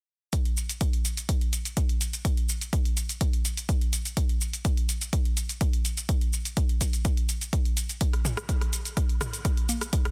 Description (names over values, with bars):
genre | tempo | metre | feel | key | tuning
house | 125 BPM | 4/4 | straight | none | none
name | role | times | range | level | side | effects
electronic hi-hat and shaker | drums | 0.3-10.1 s | none | -35 LUFS | equal | overdrive
electronic kick drum | drums | 0.3-10.0 s | none | -28 LUFS | equal | none
punchy analog drum machine | percussion | 8.1-10.1 s | congas, rim click, toms | -36 LUFS | equal | overdrive, soft clipping on snare, sidechain pumping on snare, sidechain pumping on toms, sidechain pumping on perc
room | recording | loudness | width
little or no reverb | dense, heavily limited modern master | -27 LUFS | mono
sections
0.3-10.1 A section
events
none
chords
none